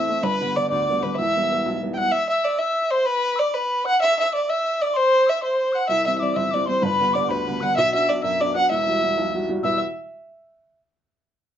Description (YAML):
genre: celtic folk, Celtic jig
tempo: 128 BPM (dotted quarters)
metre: 6/8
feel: straight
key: E minor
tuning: A4 = 439 Hz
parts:
  - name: rich fiddle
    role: melody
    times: 0.0-9.8 s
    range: B4 to G5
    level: -21 LUFS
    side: right 1 dB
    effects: none
  - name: mellow tin whistle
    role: second line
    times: 0.0-9.8 s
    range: B5 to F#6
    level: -26 LUFS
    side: left 4 dB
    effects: none
  - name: clear upright piano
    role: accompaniment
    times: 0.0-2.1, 5.9-9.8 s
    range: E1 to B4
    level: -25 LUFS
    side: equal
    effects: none
room: moderate studio ambience, RT60 0.5 s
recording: nothing above 7.8 kHz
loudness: -19 LUFS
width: side -9 dB against mid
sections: 0.0-2.1 A section; 2.1-9.6 B section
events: none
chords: 0.2 G; 1.2 Em; 2.1 N.C.; 5.9 C; 6.8 G; 7.8 Bm; 8.7 Emadd9